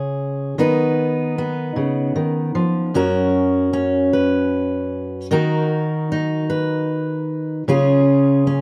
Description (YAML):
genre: folk, solo fingerstyle acoustic guitar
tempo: 51 BPM (dotted quarters)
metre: 6/8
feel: straight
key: F# major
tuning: A4 = 440 Hz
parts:
  - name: fingerpicked steel-string acoustic guitar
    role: solo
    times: 0.0-8.6 s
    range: F#2 to B4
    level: -19 LUFS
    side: equal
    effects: slapback echo
room: light reverb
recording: recorded outdoors, with no room sound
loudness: -19 LUFS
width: mono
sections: 0.0-8.6 A section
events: none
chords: 0.0 C#; 0.6 B/D#; 2.9 F#; 5.3 D#m; 7.7 C#